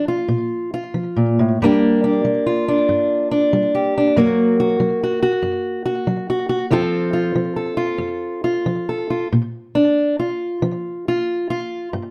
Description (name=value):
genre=folk, solo fingerstyle acoustic guitar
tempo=46 BPM (dotted quarters)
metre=6/8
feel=rubato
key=Bb major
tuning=A4 = 440 Hz
part: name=fingerpicked old ladder-braced acoustic guitar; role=solo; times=0.0-12.1 s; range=F2 to A4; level=-19 LUFS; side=equal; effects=slapback echo
room=light reverb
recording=close, detailed microphones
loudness=-19 LUFS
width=mono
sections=0.0-9.3 A section; 9.3-12.1 B section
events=none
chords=0.0 Bb5; 1.6 Gm; 4.1 Gb; 6.7 F; 9.3 Bb